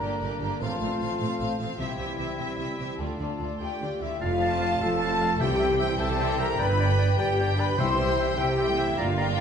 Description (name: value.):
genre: cinematic, heroic adventure film score.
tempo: 101 BPM (dotted quarters).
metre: 12/8.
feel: straight.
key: F major.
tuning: A4 = 440 Hz.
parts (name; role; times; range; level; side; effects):
warm symphonic violin section; melody; 0.0-9.4 s; D5 to A5; -34 LUFS; left 3 dB; none.
clear clarinet; second line; 0.0-9.4 s; D4 to F5; -36 LUFS; left 1 dB; none.
mellow large flute ensemble; second line; 0.0-9.4 s; E5 to C6; -35 LUFS; left 3 dB; none.
warm symphonic violin section; second line; 0.0-9.4 s; F4 to C6; -36 LUFS; left 2 dB; none.
warm symphonic viola section; accompaniment; 0.0-9.4 s; A3 to Bb4; -36 LUFS; right 1 dB; none.
warm French horn section; sustained chords; 0.0-9.4 s; C4 to C5; -31 LUFS; left 2 dB; none.
warm trombone section; sustained chords; 0.0-9.4 s; D3 to Bb3; -36 LUFS; right 1 dB; none.
mellow trumpet; stabs; 0.0-9.4 s; E4 to C5; -34 LUFS; right 2 dB; none.
rich symphonic cello section; bass; 0.0-9.4 s; F2 to D3; -32 LUFS; right 1 dB; none.
warm symphonic double bass section; bass; 0.0-9.4 s; F1 to D2; -31 LUFS; right 3 dB; none.
timpani; percussion; 1.8-8.3 s; C3; -34 LUFS; left 3 dB; none.
clear oboe; second line; 4.2-9.4 s; G5 to Bb5; -37 LUFS; equal; none.
room: wet recital hall reverb, RT60 1.6 s.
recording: recorded in a church or concert hall, nothing above 10.4 kHz.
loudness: -24 LUFS.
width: side -7 dB against mid.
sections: 0.0-4.2 A section; 4.2-9.4 B section.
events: none.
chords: 0.0 Gm; 0.6 F/A; 1.8 C; 3.0 Dm; 4.2 F; 5.4 C; 6.6 G; 7.8 C.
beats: 0.02 0.61 1.20 | 1.79 2.38 2.99 3.60 | 4.21 4.81 5.41 6.00 | 6.60 7.19 7.79 8.38 | 8.97.